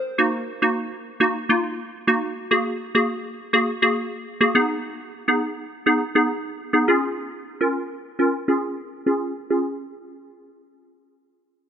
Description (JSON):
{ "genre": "pop", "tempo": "103 BPM", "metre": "4/4", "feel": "straight", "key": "Db major", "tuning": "A4 = 439 Hz", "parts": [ { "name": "wavetable chord stab", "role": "accompaniment", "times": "0.2-9.8 s", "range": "Bb3 to Bb4", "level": "-20 LUFS", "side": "equal", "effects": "low-pass filter" } ], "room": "moderate lush hall reverb, RT60 2.8 s", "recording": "none", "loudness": "-20 LUFS", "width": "side -8 dB against mid", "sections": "0.2-9.5 A section; 9.5-11.7 B section", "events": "filter sweep on synth stab 0.2-9.5", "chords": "0.2 Ebm; 2.5 Gbadd9; 4.6 Cb6; 6.9 Db" }